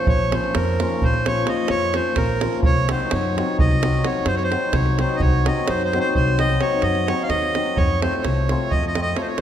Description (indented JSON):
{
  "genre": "balkan folk, Balkan wedding band",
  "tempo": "257 BPM (eighths)",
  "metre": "11/8",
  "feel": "straight",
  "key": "unclear",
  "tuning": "A4 = 437 Hz",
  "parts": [
    { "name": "accordion", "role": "melody", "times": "0.0-9.4 s", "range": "Bb4 to F5", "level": "-23 LUFS", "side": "right 2 dB", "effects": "none" },
    { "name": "cimbalom", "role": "accompaniment", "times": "0.0-9.3 s", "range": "F3 to A4", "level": "-24 LUFS", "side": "left 4 dB", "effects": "none" },
    { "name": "upright bass", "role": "bass", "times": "0.1-9.4 s", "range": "Bb1 to Gb2", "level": "-23 LUFS", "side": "equal", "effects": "none" },
    { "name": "davul", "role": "percussion", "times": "0.1-9.4 s", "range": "none", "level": "-24 LUFS", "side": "right 2 dB", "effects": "none" }
  ],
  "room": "moderate concert hall reverb, RT60 2.0 s",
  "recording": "none",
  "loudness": "-18 LUFS",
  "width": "side -10 dB against mid",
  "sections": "0.0-9.4 A section",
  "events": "none",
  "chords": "0.0 Bbm; 2.6 Cdim; 7.8 F"
}